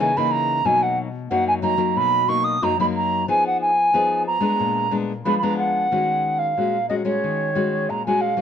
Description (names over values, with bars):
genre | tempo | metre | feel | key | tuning
samba | 91 BPM | 4/4 | straight | Eb minor | A4 = 440 Hz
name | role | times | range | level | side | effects
bright reedy baroque flute | melody | 0.0-8.4 s | Db5 to D#6 | -20 LUFS | right 2 dB | none
nylon-string guitar | accompaniment | 0.0-8.4 s | F#2 to Ab4 | -23 LUFS | left 5 dB | none
room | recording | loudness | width
moderate studio reverb, RT60 0.8 s | worn, warbling old tape, cassette tape, warbly pitch drift | -18 LUFS | side -8 dB against mid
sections
0.0-5.9 A section; 5.9-8.4 B section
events
none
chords
0.0 Gb6 (rootless); 0.6 Bmaj7; 3.3 Fm7b5; 4.6 Bb7b9; 5.9 Ebm7